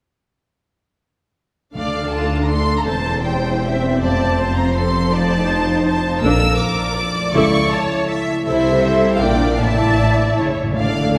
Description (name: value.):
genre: classical.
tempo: 160 BPM.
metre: 3/4.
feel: straight.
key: D minor.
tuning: A4 = 440 Hz.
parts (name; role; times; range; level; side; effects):
warm symphonic violin section; melody; 1.8-11.1 s; C5 to E6; -24 LUFS; equal; none.
bright symphonic violin section; second line; 1.8-11.1 s; F4 to E5; -27 LUFS; equal; none.
warm symphonic viola section; accompaniment; 1.8-11.2 s; C4 to D5; -23 LUFS; equal; none.
concert harp; arpeggios; 1.8-11.2 s; A2 to E5; -28 LUFS; equal; none.
rich chamber cello section; bass; 1.8-11.2 s; D2 to D3; -26 LUFS; equal; none.
rich symphonic double bass section; bass; 1.8-11.2 s; E1 to D2; -25 LUFS; equal; none.
timpani; percussion; 1.8-2.3, 10.4-10.8 s; A2 to D3; -30 LUFS; equal; none.
room: wet church reverb, RT60 2.6 s.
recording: recorded in a church or concert hall.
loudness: -18 LUFS.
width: mono.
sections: 1.8-10.8 A section.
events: timpani fill 10.4-10.8.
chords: 1.8 Dm; 2.9 C/E; 4.0 F; 5.1 F7; 6.2 Bbmaj7; 7.3 A/C#; 8.5 Am/C; 9.2 Bb; 9.6 Asus4; 10.4 A.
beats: | 1.76 2.14 2.52 | 2.89 3.26 3.64 | 4.01 4.38 4.76 | 5.13 5.50 5.87 | 6.23 6.60 6.97 | 7.34 7.71 8.09 | 8.47 8.84 9.22 | 9.62 10.01 10.40 | 10.79 11.17.